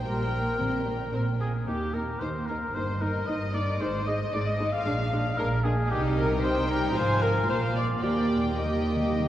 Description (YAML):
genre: quick classical-period movement for symphony orchestra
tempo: 112 BPM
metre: 4/4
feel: straight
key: Eb major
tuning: A4 = 439 Hz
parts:
  - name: warm studio violin section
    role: melody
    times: 0.0-9.3 s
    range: D5 to Ab5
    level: -38 LUFS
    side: left 2 dB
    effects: none
  - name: warm studio violin section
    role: second line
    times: 0.0-9.3 s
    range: G4 to F5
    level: -33 LUFS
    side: left 3 dB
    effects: none
  - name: mellow oboe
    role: second line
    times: 0.1-9.3 s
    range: G4 to F5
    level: -31 LUFS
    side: left 1 dB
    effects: none
  - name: dark studio viola section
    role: accompaniment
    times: 0.1-9.3 s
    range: F3 to G4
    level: -31 LUFS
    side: right 1 dB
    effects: none
  - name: dark studio double bass section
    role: bass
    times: 0.1-9.3 s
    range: G1 to Eb2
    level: -32 LUFS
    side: right 2 dB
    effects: none
  - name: warm studio cello section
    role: bass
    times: 0.1-9.3 s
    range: Eb2 to C3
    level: -32 LUFS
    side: right 1 dB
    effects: none
  - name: timpani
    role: percussion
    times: 0.6-1.4, 8.0-9.3 s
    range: Bb2 to Eb3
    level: -37 LUFS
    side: left 1 dB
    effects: none
room: wet cathedral reverb, RT60 4.3 s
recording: worn, warbling old tape, cassette tape, warbly pitch drift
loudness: -24 LUFS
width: side -12 dB against mid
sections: 0.0-9.3 A section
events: timpani fill 8.0-9.3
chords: 0.0 Eb/Bb (rootless); 0.6 Abmaj9/Bb (rootless); 1.7 Eb5; 2.8 Eb/G; 3.8 Ab5; 4.9 Bb7; 5.9 Cm; 7.0 Fm/Ab; 7.5 Bb; 8.0 Eb